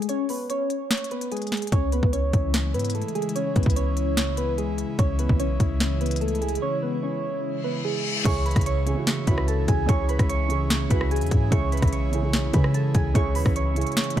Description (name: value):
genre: hip hop, trap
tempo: 147 BPM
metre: 4/4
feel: half-time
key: C# minor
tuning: A4 = 439 Hz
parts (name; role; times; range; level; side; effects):
- soft electric-piano-like synth keys; melody; 0.0-14.2 s; G#3 to C#6; -28 LUFS; right 1 dB; chorus, phaser
- trap drum kit; drums; 0.0-14.2 s; crash cymbal, hi-hat, kick drum, rim click, snare drum; -24 LUFS; equal; none
- airy breathy pad; sustained chords; 1.7-14.2 s; C#3 to E4; -31 LUFS; equal; chorus
- clean 808-style bass; bass; 1.7-14.2 s; B1 to C#3; -25 LUFS; equal; none
- reverse cymbal; sound effects; 7.6-8.3 s; none; -30 LUFS; left 6 dB; none
- dark baby grand piano; accompaniment; 8.2-14.2 s; C#3 to G#4; -29 LUFS; right 4 dB; none
room: light reverb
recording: dark, warm production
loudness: -21 LUFS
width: side -11 dB against mid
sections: 0.0-8.3 A section; 8.3-14.2 B section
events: break 0.0-1.7, 6.6-8.3; reverse cymbal 7.6-8.3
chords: 0.0 C#5; 1.7 C#m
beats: | 0.09 0.50 0.91 1.31 | 1.72 2.13 2.54 2.95 | 3.36 3.76 4.17 4.58 | 4.99 5.40 5.80 6.21 | 6.62 7.03 7.44 7.85 | 8.25 8.66 9.07 9.48 | 9.89 10.29 10.70 11.11 | 11.52 11.93 12.34 12.74 | 13.15 13.56 13.97